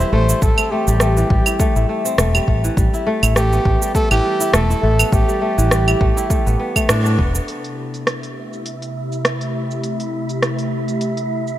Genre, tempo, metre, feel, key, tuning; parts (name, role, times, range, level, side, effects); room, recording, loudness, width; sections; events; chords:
organic downtempo; 102 BPM; 4/4; swing 55% on 16ths; A minor; A4 = 436 Hz
trumpet with bucket mute; melody; 0.0-6.9 s; G4 to C5; -22 LUFS; right 1 dB; tape echo
kora; arpeggios; 0.0-9.2 s; E3 to E4; -21 LUFS; left 1 dB; tape echo
mellow fretless electric bass; bass; 0.0-7.4 s; E1 to A2; -17 LUFS; equal; sidechain pumping
organic electronic drum kit; drums; 0.0-11.6 s; cabasa, claves, hi-hat, rim click; -21 LUFS; right 2 dB; overdrive, low-pass filter on perc, low-pass filter on snare, low-pass filter on hats
electronic kick drum; drums; 0.4-7.3 s; -18 LUFS; equal; overdrive
warm analog pad; sustained chords; 7.5-11.6 s; C3 to G4; -24 LUFS; left 1 dB; chorus, sidechain pumping
wind-like tuned noise texture; texture; 8.2-11.6 s; E4 to E5; -28 LUFS; right 2 dB; built-in reverb
light reverb; -15 LUFS; side -13 dB against mid
0.0-7.5 A section; 7.5-11.6 B section
band accent 6.9; filter sweep on analog synth pad 7.5-11.6
0.0 Am7; 2.8 Em; 7.5 Am7